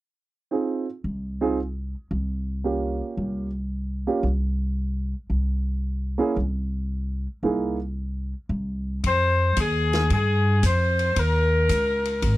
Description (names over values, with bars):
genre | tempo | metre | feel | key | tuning
jazz, big band swing | 113 BPM | 4/4 | swing 68% on 8ths | F minor | A4 = 445 Hz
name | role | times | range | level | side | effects
warm upright piano | accompaniment | 0.5-7.8 s | Bb3 to Ab4 | -24 LUFS | right 4 dB | none
upright bass | bass | 1.0-12.4 s | Ab1 to G2 | -24 LUFS | equal | none
swinging big-band drum kit | drums | 9.0-12.4 s | hi-hat, kick drum, ride cymbal, snare drum | -32 LUFS | left 1 dB | none
bright saxophone section | melody | 9.1-12.4 s | Ab4 to C5 | -22 LUFS | left 2 dB | none
room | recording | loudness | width
little or no reverb | dry, close 1970s-style studio recording | -22 LUFS | side -16 dB against mid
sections
0.5-9.0 A section; 9.0-12.4 B section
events
none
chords
0.5 Cmadd11; 2.6 Gm7b5; 4.8 N.C.; 6.9 C7alt; 9.0 Fm7; 11.2 Eb5